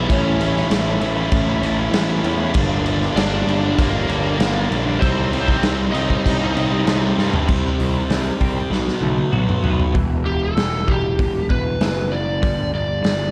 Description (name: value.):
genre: quiet-loud alternative rock.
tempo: 97 BPM.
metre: 4/4.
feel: straight.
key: E minor from 9.9 s.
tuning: A4 = 440 Hz.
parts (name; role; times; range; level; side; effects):
lead guitar through a small cranked amp; melody; 0.0-13.3 s; Bb3 to Eb5; -26 LUFS; equal; overdrive, slapback echo.
distorted electric guitar; riff; 0.0-7.5 s; G2 to E4; -28 LUFS; equal; distortion.
thick fuzz guitar; riff; 0.0-9.9 s; G2 to E4; -25 LUFS; equal; distortion.
fuzz picked electric bass; bass; 0.0-13.3 s; E1 to G2; -25 LUFS; equal; overdrive.
raw garage drum kit; drums; 0.1-13.2 s; crash cymbal, hi-hat, kick drum, snare drum, toms; -23 LUFS; equal; none.
clean electric guitar; arpeggios; 7.5-13.3 s; E2 to F#4; -32 LUFS; equal; ensemble chorus.
room: light reverb, small room ambience.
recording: none.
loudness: -19 LUFS.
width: mono.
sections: 0.0-7.5 A section; 7.5-9.9 B section; 9.9-13.3 C section.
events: drum fill 7.2-7.5, 8.7-9.9.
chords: 0.1 A; 2.5 Gm; 5.0 Cm; 8.7 B5; 9.9 Em; 12.4 G5.